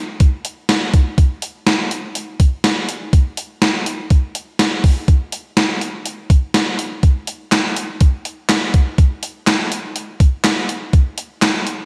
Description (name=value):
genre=pop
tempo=123 BPM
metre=4/4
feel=straight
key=none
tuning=none
part: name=gated 80s digital drum machine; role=drums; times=0.2-11.8 s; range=handclaps, hi-hat, kick drum, snare drum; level=-16 LUFS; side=equal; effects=gated reverb, gated reverb snare
room=moderate lush hall reverb, RT60 1.6 s, digital ambience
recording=big arena sound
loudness=-17 LUFS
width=mono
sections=0.0-11.9 A section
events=none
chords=none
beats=0.20 0.69 | 1.18 1.67 2.15 2.64 | 3.13 3.62 4.11 4.59 | 5.08 5.57 6.06 6.54 | 7.03 7.52 8.01 8.50 | 8.98 9.47 9.96 10.45 | 10.94 11.42